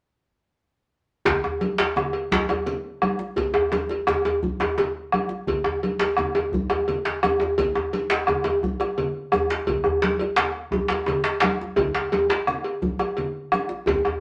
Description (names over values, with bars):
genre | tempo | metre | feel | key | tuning
west african traditional, West African drum ensemble | 114 BPM (dotted quarters) | 12/8 | straight | none | none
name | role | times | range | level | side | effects
bombo | percussion | 1.3-14.2 s | none | -30 LUFS | equal | none
congas | percussion | 1.3-14.0 s | none | -33 LUFS | equal | none
cowbell | percussion | 1.3-14.0 s | none | -30 LUFS | equal | none
djembe | percussion | 1.3-14.0 s | none | -36 LUFS | equal | none
djembe | percussion | 1.3-14.2 s | none | -26 LUFS | equal | none
room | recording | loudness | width
wet studio reverb, RT60 0.8 s | none | -24 LUFS | mono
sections
1.3-14.2 A section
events
none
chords
none